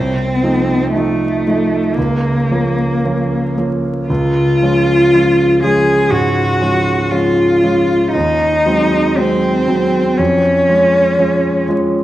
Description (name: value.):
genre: classical, romantic duo for cello and grand piano.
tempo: 56-62 BPM.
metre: 4/4.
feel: rubato.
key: unclear.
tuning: A4 = 440 Hz.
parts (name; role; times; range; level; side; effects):
rich cello; melody; 0.0-11.7 s; A3 to Ab4; -14 LUFS; left 1 dB; none.
clear grand piano; accompaniment; 0.0-12.0 s; C2 to Eb4; -15 LUFS; right 1 dB; none.
room: wet scoring stage reverb, RT60 2.0 s.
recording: vinyl crackle.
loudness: -12 LUFS.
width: side -14 dB against mid.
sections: 0.0-12.0 A section.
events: none.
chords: 0.0 F7/C; 2.0 Bbm/Db; 4.1 Db; 8.2 Ab7/Eb; 10.2 Db/F.